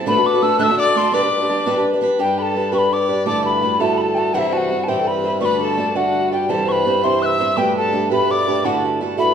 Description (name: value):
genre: celtic folk, Celtic jig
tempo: 112 BPM (dotted quarters)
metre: 6/8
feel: straight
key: G major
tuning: A4 = 439 Hz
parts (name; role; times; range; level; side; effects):
- picked swing-style acoustic guitar; accompaniment; 0.0-9.3 s; B2 to D5; -19 LUFS; right 3 dB; none
- mellow hollow wooden whistle; melody; 0.1-9.3 s; E5 to F#6; -20 LUFS; left 2 dB; none
- dark fiddle; second line; 0.1-9.3 s; E4 to E5; -23 LUFS; left 6 dB; none
- hand-pumped harmonium; drone; 2.2-9.3 s; G2 to G3; -26 LUFS; equal; none
room: wet recital hall reverb, RT60 1.4 s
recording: minimal, uncompressed stereo recording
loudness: -15 LUFS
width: side -8 dB against mid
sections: 0.0-2.2 A section; 2.2-9.3 B section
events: none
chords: 0.1 D; 1.1 G; 3.3 Dadd9; 4.3 C; 5.4 D; 6.5 C; 7.6 Gadd9; 8.6 Dadd9